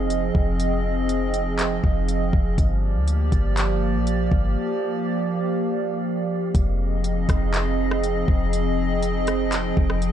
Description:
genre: hip hop, atmospheric cloud-rap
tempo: 121 BPM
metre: 4/4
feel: half-time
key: F dorian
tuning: A4 = 440 Hz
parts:
  - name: hollow soft pad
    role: sustained chords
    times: 0.0-10.1 s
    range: F3 to Eb5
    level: -24 LUFS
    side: right 1 dB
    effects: chorus, sidechain pumping
  - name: clean 808-style bass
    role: bass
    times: 0.0-10.1 s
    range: F1 to D2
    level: -24 LUFS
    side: equal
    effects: none
  - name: wind-like tuned noise texture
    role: texture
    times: 0.0-10.1 s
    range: Bb3 to G5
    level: -36 LUFS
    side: right 1 dB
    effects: built-in reverb
  - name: smooth R&B drum kit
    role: drums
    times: 0.1-10.1 s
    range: handclaps, hi-hat, kick drum, rim click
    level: -24 LUFS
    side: equal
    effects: none
room: little or no reverb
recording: dark, warm production, nothing above 11.0 kHz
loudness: -20 LUFS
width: side -10 dB against mid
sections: 0.0-6.5 A section; 6.5-10.1 B section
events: break 4.6-6.5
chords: 0.0 Fm7; 2.6 Gm7; 6.5 Fm7

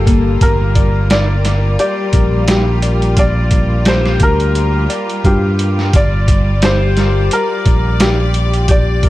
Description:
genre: trip hop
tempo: 87 BPM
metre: 4/4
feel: swing 56% on 16ths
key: G minor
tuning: A4 = 439 Hz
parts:
  - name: felt-muted upright piano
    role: melody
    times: 0.0-9.1 s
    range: G4 to D5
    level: -19 LUFS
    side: equal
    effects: tape echo
  - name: bright symphonic string section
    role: sustained chords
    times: 0.0-9.1 s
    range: G3 to D5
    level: -22 LUFS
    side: equal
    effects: none
  - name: Celtic harp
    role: arpeggios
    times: 0.0-9.1 s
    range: Bb3 to D5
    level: -22 LUFS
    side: left 7 dB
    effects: tape echo
  - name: modern bright fingered electric bass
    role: bass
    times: 0.0-9.1 s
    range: G1 to G2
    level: -14 LUFS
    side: equal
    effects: none
  - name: trip hop sampler-style drum kit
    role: drums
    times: 0.1-9.1 s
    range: hi-hat, kick drum, snare drum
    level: -15 LUFS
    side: equal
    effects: none
room: studio reverb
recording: dark, warm production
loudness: -11 LUFS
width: side -16 dB against mid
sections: 0.0-9.1 A section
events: none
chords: 0.0 Gm7

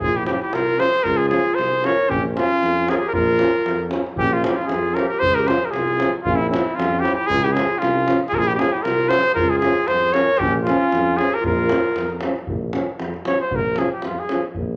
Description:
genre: balkan folk, Balkan brass band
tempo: 115 BPM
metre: 2/4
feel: swing 56% on 16ths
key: Bb dorian sharp4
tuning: A4 = 435 Hz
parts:
  - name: clear cornet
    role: melody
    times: 0.0-14.4 s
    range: E4 to Db5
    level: -22 LUFS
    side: equal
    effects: none
  - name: clear clarinet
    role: second line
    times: 0.0-12.2 s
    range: C4 to Bb4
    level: -27 LUFS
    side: equal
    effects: none
  - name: mellow tuba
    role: bass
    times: 0.0-14.8 s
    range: Bb1 to F2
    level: -28 LUFS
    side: equal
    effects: none
  - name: davul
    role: percussion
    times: 0.0-14.7 s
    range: none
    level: -30 LUFS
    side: equal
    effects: none
  - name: warm French horn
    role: accompaniment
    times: 0.3-14.4 s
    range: Db4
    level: -31 LUFS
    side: equal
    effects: none
  - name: warm euphonium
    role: accompaniment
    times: 0.3-14.4 s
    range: F3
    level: -31 LUFS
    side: equal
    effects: none
room: moderate large studio reverb, RT60 1.2 s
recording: none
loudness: -20 LUFS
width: mono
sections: 0.0-4.2 A section; 4.2-12.5 A section; 12.5-14.8 B section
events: cornet solo 12.5-14.8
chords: 0.0 Bbm; 1.0 Db; 2.1 Bbm; 5.2 Db; 6.3 Bbm; 7.3 Db; 8.3 Bbm; 9.4 Db; 10.4 Bbm

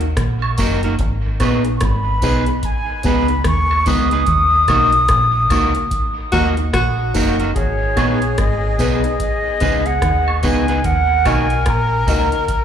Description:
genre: roots reggae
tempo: 73 BPM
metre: 4/4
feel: swing 61% on 16ths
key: G# minor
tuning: A4 = 438 Hz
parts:
  - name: electric guitar at the edge of break-up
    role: accompaniment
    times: 0.0-12.4 s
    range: A#3 to B4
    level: -24 LUFS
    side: right 6 dB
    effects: tape echo, slapback echo
  - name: deep dub fingered electric bass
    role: bass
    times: 0.0-12.3 s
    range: F#1 to D#2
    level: -19 LUFS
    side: equal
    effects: none
  - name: booming analog drum machine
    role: drums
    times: 0.0-12.6 s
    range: hi-hat, kick drum, rim click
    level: -22 LUFS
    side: equal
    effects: none
  - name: woodblock and tambourine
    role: percussion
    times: 0.4-12.3 s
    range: none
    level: -28 LUFS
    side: right 5 dB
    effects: slapback echo
  - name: dark upright piano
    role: stabs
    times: 0.6-12.4 s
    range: A#3 to D#5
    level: -25 LUFS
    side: left 6 dB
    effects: slapback echo
  - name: jazz flute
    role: melody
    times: 1.8-12.6 s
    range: C#5 to D#6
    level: -18 LUFS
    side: equal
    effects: tape echo, slapback echo
  - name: breathy tenor saxophone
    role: second line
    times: 6.3-12.6 s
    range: F#4 to A#4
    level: -23 LUFS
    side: left 2 dB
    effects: tape echo, slapback echo
room: light reverb, small room ambience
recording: live gig heard through the venue's PA, club reverb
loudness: -14 LUFS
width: side -8 dB against mid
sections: 0.0-7.6 A section; 7.6-12.6 B section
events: band accent 4.3-7.6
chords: 0.0 D#m; 1.0 G#m; 4.3 D#m; 7.6 G#m; 10.8 D#m

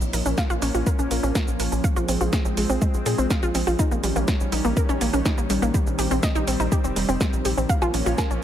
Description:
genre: melodic techno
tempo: 123 BPM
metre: 4/4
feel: straight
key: Bb dorian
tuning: A4 = 440 Hz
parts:
  - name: lush unison pad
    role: sustained chords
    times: 0.0-8.4 s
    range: Eb3 to Db4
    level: -29 LUFS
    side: equal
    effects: chorus, sidechain pumping
  - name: tight sequencer bass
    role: bass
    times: 0.0-8.4 s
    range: F1 to Bb2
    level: -26 LUFS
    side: equal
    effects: sidechain pumping
  - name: punchy analog drum machine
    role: drums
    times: 0.0-8.4 s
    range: hi-hat, shaker, snare drum, woodblock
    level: -29 LUFS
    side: right 2 dB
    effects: overdrive, sidechain pumping on perc, sidechain pumping on hats
  - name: wide unison pluck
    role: arpeggios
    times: 0.1-8.4 s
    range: G3 to F5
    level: -26 LUFS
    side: equal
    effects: sidechain pumping, dub echo
  - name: electronic kick drum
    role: drums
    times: 0.4-8.3 s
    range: none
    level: -23 LUFS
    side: equal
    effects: none
room: digital ambience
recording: none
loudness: -20 LUFS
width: side -10 dB against mid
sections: 0.0-8.4 A section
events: none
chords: 0.0 Bbm; 1.8 Fm/Bb; 3.8 Eb7/Bb; 5.7 Cm/Bb; 7.7 Bbm

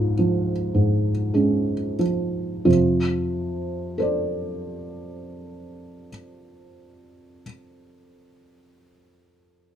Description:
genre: neoclassical minimalist piano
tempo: 46 BPM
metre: 4/4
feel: rubato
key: F major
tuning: A4 = 443 Hz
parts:
  - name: felt-muted upright piano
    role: solo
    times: 0.0-9.8 s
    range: Db2 to D5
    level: -21 LUFS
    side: right 1 dB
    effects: none
room: light reverb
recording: minimal, uncompressed stereo recording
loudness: -20 LUFS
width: side -10 dB against mid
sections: 0.0-2.7 A section; 2.7-7.9 B section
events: slowing down 0.0-2.7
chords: 0.0 Db; 2.7 F6

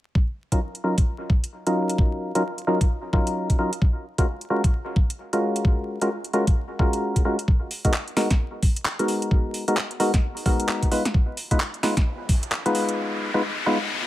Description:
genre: UK garage, two-step garage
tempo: 131 BPM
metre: 4/4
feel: swing 60% on 16ths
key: Eb minor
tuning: A4 = 440 Hz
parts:
  - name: electronic kick drum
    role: drums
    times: 0.2-12.4 s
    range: none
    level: -20 LUFS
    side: equal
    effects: small room ambience
  - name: percussive organ stab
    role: stabs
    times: 0.5-13.8 s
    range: Gb3 to Cb5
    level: -24 LUFS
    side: equal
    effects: lush chorus, tape echo
  - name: garage drum kit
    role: drums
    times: 0.5-13.0 s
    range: handclaps, hi-hat, snare drum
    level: -28 LUFS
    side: equal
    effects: small room ambience
  - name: riser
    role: sound effects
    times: 12.1-14.1 s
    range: none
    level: -30 LUFS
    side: left 3 dB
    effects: none
room: light reverb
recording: vinyl crackle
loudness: -21 LUFS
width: side -14 dB against mid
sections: 0.2-14.1 A section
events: filter sweep on synth stab 0.2-14.1; riser 12.1-14.1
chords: 0.2 Ebm7; 3.8 Gbmaj7; 7.5 Abm7; 10.9 Fm7b5

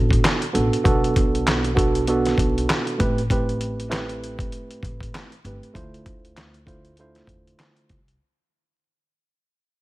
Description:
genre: hip hop, boom-bap hip-hop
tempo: 98 BPM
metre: 4/4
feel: swing 58% on 16ths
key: unclear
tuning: A4 = 440 Hz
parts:
  - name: tine electric piano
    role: accompaniment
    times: 0.0-8.0 s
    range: A2 to C5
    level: -24 LUFS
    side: right 2 dB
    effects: high-pass filter, low-pass filter
  - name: upright bass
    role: bass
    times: 0.0-8.1 s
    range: G1 to E2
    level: -26 LUFS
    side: equal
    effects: none
  - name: dusty soul sampler-style drum kit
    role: drums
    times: 0.1-8.2 s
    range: handclaps, hi-hat, kick drum, snare drum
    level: -23 LUFS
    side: equal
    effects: none
room: digital ambience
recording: vinyl crackle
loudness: -19 LUFS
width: side -18 dB against mid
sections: 0.0-8.2 A section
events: fade-out 0.0-8.2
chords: 0.0 Bm7; 3.0 Am7; 5.8 Dm7

